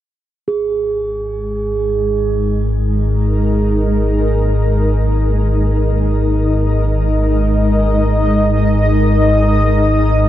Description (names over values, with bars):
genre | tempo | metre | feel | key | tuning
dark ambient drone | free time | none | none | unclear | A4 = 440 Hz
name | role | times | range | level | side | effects
granular cloud pad | sustained chords | 1.4-10.3 s | G#3 to D#5 | -16 LUFS | left 1 dB | built-in reverb, shimmer reverb
deep rumbling drone | drone | 1.0-10.3 s | G#1 to G#2 | -15 LUFS | equal | built-in reverb, wide subtle chorus
bronze singing bowl | texture | 0.5-10.3 s | G#4 | -23 LUFS | right 6 dB | shimmer reverb
room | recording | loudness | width
moderate huge ambient reverb, RT60 7.4 s | none | -13 LUFS | side -12 dB against mid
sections
0.5-10.3 A section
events
none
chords
0.5 G#sus2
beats
free time